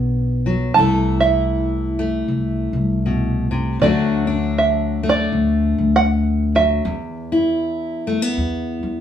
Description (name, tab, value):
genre	acoustic folk duo or small band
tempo	79 BPM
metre	4/4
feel	swing 60% on 8ths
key	unclear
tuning	A4 = 440 Hz
part	open-back banjo	melody	0.0-9.0 s	D5 to B5	-18 LUFS	right 4 dB	none
part	fingerpicked steel-string acoustic guitar	accompaniment	0.0-9.0 s	E2 to A4	-20 LUFS	left 3 dB	none
part	upright bass	bass	0.0-9.0 s	B1 to E2	-21 LUFS	equal	none
room	moderate studio reverb, RT60 0.7 s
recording	band playing live in one room, small room ambience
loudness	-16 LUFS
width	side -9 dB against mid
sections	0.0-9.0 A section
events	none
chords	0.0 Bm; 0.8 Am/C; 3.8 D; 6.9 E5